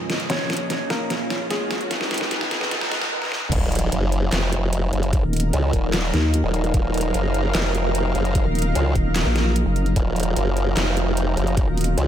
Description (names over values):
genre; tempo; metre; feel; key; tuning
heavy wobble dubstep; 149 BPM; 4/4; half-time; Eb minor; A4 = 440 Hz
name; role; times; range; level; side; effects
felt-muted upright piano; melody; 0.0-3.1 s; Ab3 to Db5; -30 LUFS; left 1 dB; low-pass filter, analog delay
lush unison pad; sustained chords; 0.0-12.1 s; Db2 to F4; -29 LUFS; equal; chorus, sidechain pumping
riser, swell and sub drop; sound effects; 0.0-5.1 s; none; -31 LUFS; equal; none
granular cloud pad; texture; 0.0-12.1 s; Db4 to Bb5; -29 LUFS; equal; built-in reverb, sidechain pumping
dubstep drum kit; drums; 0.1-12.1 s; crash cymbal, handclaps, hi-hat, snare drum, toms; -26 LUFS; equal; none
formant-sweep wobble bass; bass; 3.5-12.1 s; Eb1 to Db2; -21 LUFS; equal; chorus, overdrive
electronic kick drum; drums; 3.5-11.7 s; none; -21 LUFS; equal; none
vowel-sweep wobble bass; bass; 5.2-12.0 s; Eb1 to Eb2; -20 LUFS; equal; chorus, overdrive
room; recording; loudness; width
light reverb; high-pass filter; -19 LUFS; side -10 dB against mid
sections
0.0-3.5 A section; 3.5-12.1 B section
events
build-up 0.0-3.5; drum fill 0.0-3.1, 3.2-3.5; riser 0.0-3.1; filter sweep on analog synth pad 0.0-3.5; swell 2.7-3.5; drop 3.5-12.1; impact 3.5-5.1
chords
0.3 Bbm; 1.9 Abm; 3.5 Ebmadd9